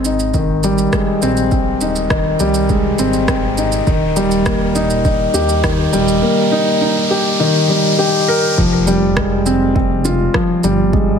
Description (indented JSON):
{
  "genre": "piano and strings electronica",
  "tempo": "102 BPM",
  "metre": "4/4",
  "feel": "straight",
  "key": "F minor",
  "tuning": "A4 = 440 Hz",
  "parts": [
    { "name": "felt-muted upright piano", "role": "riff", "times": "0.0-11.2 s", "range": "Eb3 to Bb4", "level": "-14 LUFS", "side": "left 1 dB", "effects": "ping-pong delay" },
    { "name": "dark detuned saw bass", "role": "bass", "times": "0.0-11.2 s", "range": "Eb1 to Eb2", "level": "-21 LUFS", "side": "equal", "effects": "sidechain pumping" },
    { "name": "electronic shaker and rim click", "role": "drums", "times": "0.0-10.8 s", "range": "none", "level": "-23 LUFS", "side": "right 2 dB", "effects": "overdrive" },
    { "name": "riser and impact", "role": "sound effects", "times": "0.0-10.9 s", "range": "none", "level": "-24 LUFS", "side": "right 1 dB", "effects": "none" },
    { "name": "electronic kick drum", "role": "drums", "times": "0.3-11.0 s", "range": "none", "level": "-19 LUFS", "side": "equal", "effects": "overdrive" }
  ],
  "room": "moderate lush hall reverb, RT60 1.5 s, digital ambience",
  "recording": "none",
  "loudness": "-12 LUFS",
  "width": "side -7 dB against mid",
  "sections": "0.0-8.6 A section; 8.6-11.2 B section",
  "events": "build-up 0.0-8.6; riser 0.0-8.6; drop 8.6-11.2; impact 8.6-10.9",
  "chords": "0.0 Abmaj7; 3.9 Eb; 8.6 Fmadd9"
}